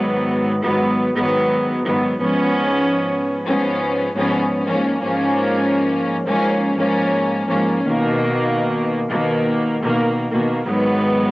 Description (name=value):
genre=hip hop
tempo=85 BPM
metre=4/4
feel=swing 58% on 16ths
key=G# dorian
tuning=A4 = 440 Hz
part: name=warm studio string section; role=solo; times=0.0-11.3 s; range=G#2 to C#4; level=-16 LUFS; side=equal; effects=high-pass filter, low-pass filter, cassette tape
room=light reverb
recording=home recording on cassette, nothing above 7.8 kHz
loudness=-16 LUFS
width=side -20 dB against mid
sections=0.0-10.7 A section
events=none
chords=0.0 G#m7; 2.2 C#7/G#; 4.7 A#m7/G#; 7.8 Bmaj7; 10.7 G#m7